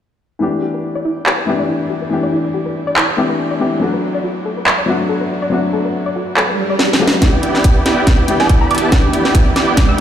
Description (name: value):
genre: future bass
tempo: 141 BPM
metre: 4/4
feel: swing 55% on 16ths, half-time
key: G major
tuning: A4 = 436 Hz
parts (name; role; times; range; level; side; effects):
- dark baby grand piano; accompaniment; 0.4-10.0 s; E3 to G4; -18 LUFS; left 3 dB; vintage 12-bit sampler grit, sidechain pumping, tape echo
- soft round pluck; arpeggios; 0.4-7.2 s; E4 to D5; -23 LUFS; left 1 dB; chorus, sidechain pumping, tape echo
- trap drum kit; drums; 1.3-10.0 s; handclaps, hi-hat, snare drum; -18 LUFS; right 1 dB; none
- swell and riser; sound effects; 6.5-10.0 s; none; -23 LUFS; right 2 dB; none
- supersaw chords; riff; 7.2-10.0 s; B3 to B5; -16 LUFS; right 2 dB; cassette tape, sidechain pumping, low-pass filter
- electronic kick drum; drums; 7.2-9.9 s; none; -12 LUFS; equal; none
- glassy wavetable pluck; melody; 8.4-10.0 s; A5 to E6; -20 LUFS; right 4 dB; chorus, sidechain pumping, dub echo
room: light reverb, digital ambience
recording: played on a big sound system in a bare room, stone room reverb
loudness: -13 LUFS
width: side -9 dB against mid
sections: 0.4-7.2 A section; 7.2-10.0 B section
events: filter sweep on synth arpeggio sound 0.4-7.2; swell 6.5-7.2; drum fill 6.8-7.2, 7.2-10.0; build-up 7.2-10.0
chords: 0.4 G6; 3.8 Bm7; 7.2 G6